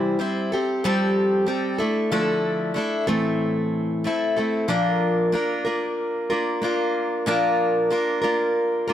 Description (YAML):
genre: rock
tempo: 93 BPM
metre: 4/4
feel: straight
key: unclear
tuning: A4 = 438 Hz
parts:
  - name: picked plugged-in steel-string acoustic guitar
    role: solo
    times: 0.0-8.9 s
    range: A2 to C5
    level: -20 LUFS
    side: equal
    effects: none
room: light reverb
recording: none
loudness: -20 LUFS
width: side -10 dB against mid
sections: 0.0-4.7 A section; 4.7-8.9 B section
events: none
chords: 0.0 C; 0.5 Fadd9; 1.8 Dmadd9; 3.1 Am; 4.7 Bb